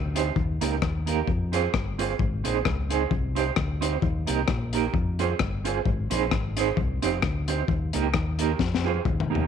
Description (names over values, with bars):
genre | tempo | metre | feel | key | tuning
ska | 131 BPM | 4/4 | swing 55% on 8ths | Ab major | A4 = 441 Hz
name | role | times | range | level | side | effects
fingered electric bass | bass | 0.0-9.4 s | F1 to F2 | -28 LUFS | left 1 dB | none
mellow electric guitar | accompaniment | 0.2-9.4 s | Bb3 to C5 | -28 LUFS | right 13 dB | tremolo, slapback echo
crunchy breakbeat drum kit | drums | 0.2-9.5 s | hi-hat, kick drum, rim click, snare drum, toms | -28 LUFS | left 4 dB | none
room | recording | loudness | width
small room ambience | 1960s-style stereo | -23 LUFS | side -8 dB against mid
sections
0.0-9.5 A section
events
drum fill 8.6-9.5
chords
0.4 Eb; 1.3 Fm; 2.2 Ab; 3.1 Cm; 4.0 Eb; 4.9 Fm; 5.9 Ab; 6.8 Cm; 7.7 Eb; 8.6 Fm